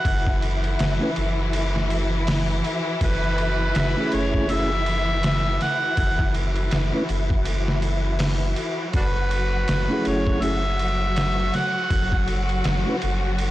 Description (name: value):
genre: trip hop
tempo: 81 BPM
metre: 4/4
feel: swing 58% on 16ths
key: F# minor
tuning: A4 = 441 Hz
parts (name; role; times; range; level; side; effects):
- overdriven harmonica; melody; 0.0-12.3 s; D4 to F#5; -27 LUFS; right 1 dB; vintage 12-bit sampler grit, tape echo
- clear studio string section; sustained chords; 0.0-13.5 s; E3 to F#4; -28 LUFS; left 2 dB; none
- trip hop sampler-style drum kit; drums; 0.0-13.5 s; hi-hat, kick drum, ride cymbal, snare drum; -26 LUFS; equal; overdrive
- wind-like tuned noise texture; texture; 0.0-13.5 s; F#4; -37 LUFS; left 2 dB; built-in reverb
- soft dub sub bass; bass; 0.1-13.5 s; F#1; -25 LUFS; equal; none
- mellow tonewheel organ; accompaniment; 1.0-13.0 s; A3 to B4; -27 LUFS; equal; slow rotary speaker, tremolo, tape echo
room: digital ambience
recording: blown-out, overdriven recording, vinyl crackle, overdrive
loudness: -20 LUFS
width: side -15 dB against mid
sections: 0.0-13.5 A section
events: none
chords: 0.0 F#m7